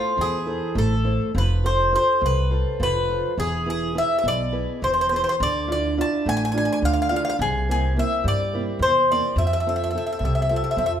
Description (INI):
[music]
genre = greek folk, Greek bouzouki band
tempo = 209 BPM (eighths)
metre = 7/8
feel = straight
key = unclear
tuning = A4 = 441 Hz
[part]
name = Greek bouzouki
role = melody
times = 0.0-10.9 s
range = F4 to A5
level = -22 LUFS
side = left 1 dB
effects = none
[part]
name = fingerpicked steel-string acoustic guitar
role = accompaniment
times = 0.0-11.0 s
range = B2 to C5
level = -26 LUFS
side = right 2 dB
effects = none
[part]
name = upright bass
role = bass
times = 0.2-11.0 s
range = E1 to G2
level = -25 LUFS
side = equal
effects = none
[sound]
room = moderate large studio reverb, RT60 1.1 s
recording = band playing live in one room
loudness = -20 LUFS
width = side -9 dB against mid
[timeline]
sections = 0.0-11.0 A section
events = speeding up 0.0-11.0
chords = 0.0 Am; 1.3 F; 3.4 E; 5.4 Dmadd9; 7.4 C7; 9.4 F